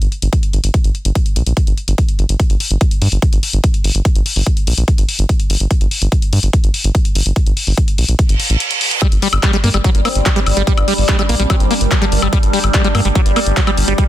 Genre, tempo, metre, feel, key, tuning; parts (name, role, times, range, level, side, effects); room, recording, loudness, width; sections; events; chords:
psychedelic trance; 145 BPM; 4/4; straight; G harmonic minor; A4 = 442 Hz
round analog bass; bass; 0.0-13.9 s; G1 to G2; -14 LUFS; equal
big-room dance drum kit; drums; 0.0-14.1 s; handclaps, hi-hat, woodblock; -21 LUFS; left 3 dB
electronic kick drum; drums; 0.3-14.1 s; -14 LUFS; equal
reverse cymbal; sound effects; 8.3-9.0 s; -18 LUFS; right 6 dB
overtone-sweeping drone; sustained chords; 9.7-14.1 s; G3 to D4; -20 LUFS; equal; chorus, built-in reverb, sidechain pumping
liquid acid bass; riff; 9.0-14.0 s; F#3 to Bb3; -19 LUFS; moving between left 4 dB and right 6 dB; chorus, auto-pan, sidechain pumping, tape echo
formant-sweep wobble bass; second line; 10.1-12.2 s; Bb3 to D4; -29 LUFS; left 1 dB; wide subtle chorus, sidechain pumping, high-pass filter, tape echo
digital ambience; dense, heavily limited modern master; -12 LUFS; side -14 dB against mid
0.0-14.1 A section
reverse cymbal 8.3-9.0
0.0 G5